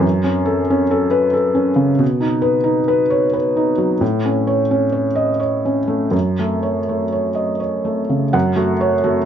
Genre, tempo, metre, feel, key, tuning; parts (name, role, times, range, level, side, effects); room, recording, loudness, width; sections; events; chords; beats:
neoclassical minimalist piano; 80-92 BPM; 3/4; rubato; F# dorian; A4 = 440 Hz
felt-muted upright piano; solo; 0.0-9.3 s; F#2 to F#5; -15 LUFS; equal
light reverb; dark, warm production, nothing above 7.7 kHz; -15 LUFS; side -9 dB against mid
0.0-8.3 A section
0.0 F#m; 2.0 B; 4.0 A; 6.1 F#m
| 0.03 0.69 1.35 | 2.01 2.67 3.35 | 4.01 4.70 5.39 | 6.13 6.87 7.61 | 8.34 9.04